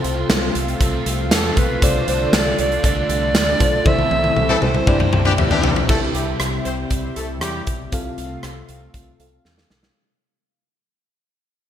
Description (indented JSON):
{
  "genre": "1980s-style pop",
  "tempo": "118 BPM",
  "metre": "4/4",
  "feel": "straight",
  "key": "C major",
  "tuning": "A4 = 440 Hz",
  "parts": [
    { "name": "FM electric piano with soft pad layer", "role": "accompaniment", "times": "0.0-10.0 s", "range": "C3 to F5", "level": "-26 LUFS", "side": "left 2 dB", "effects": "chorus" },
    { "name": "crunchy overdriven guitar", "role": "accompaniment", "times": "0.0-6.4 s", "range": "A2 to F4", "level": "-30 LUFS", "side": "right 5 dB", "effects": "ensemble chorus" },
    { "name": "lush unison pad", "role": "sustained chords", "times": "0.0-9.9 s", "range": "C3 to F4", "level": "-27 LUFS", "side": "equal", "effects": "chorus" },
    { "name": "deep dub fingered electric bass", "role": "bass", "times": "0.0-9.9 s", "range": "B1 to E2", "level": "-26 LUFS", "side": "equal", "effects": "none" },
    { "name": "big rock drum kit", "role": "drums", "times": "0.0-9.9 s", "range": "crash cymbal, hi-hat, kick drum, rim click, snare drum, tambourine, toms", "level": "-19 LUFS", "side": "equal", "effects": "gated reverb" },
    { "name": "breathy alto saxophone", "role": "melody", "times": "1.3-5.3 s", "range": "A4 to E5", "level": "-21 LUFS", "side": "right 2 dB", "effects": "none" },
    { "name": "warm horn section", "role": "stabs", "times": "4.5-7.6 s", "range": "E3 to C5", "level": "-25 LUFS", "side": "left 3 dB", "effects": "none" }
  ],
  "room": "moderate lush hall reverb, RT60 2.0 s, small room ambience",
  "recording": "bright 1980s-style digital production",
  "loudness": "-16 LUFS",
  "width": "side -10 dB against mid",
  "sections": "0.0-5.9 A section; 5.9-10.0 B section",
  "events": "drum fill 3.9-5.9, 9.4-10.0; band accent 3.9-5.9; fade-out 5.9-10.0",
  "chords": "0.0 F/C; 1.8 Dm/C; 3.9 Am/C; 4.9 Cadd9; 5.9 C; 7.9 F/C"
}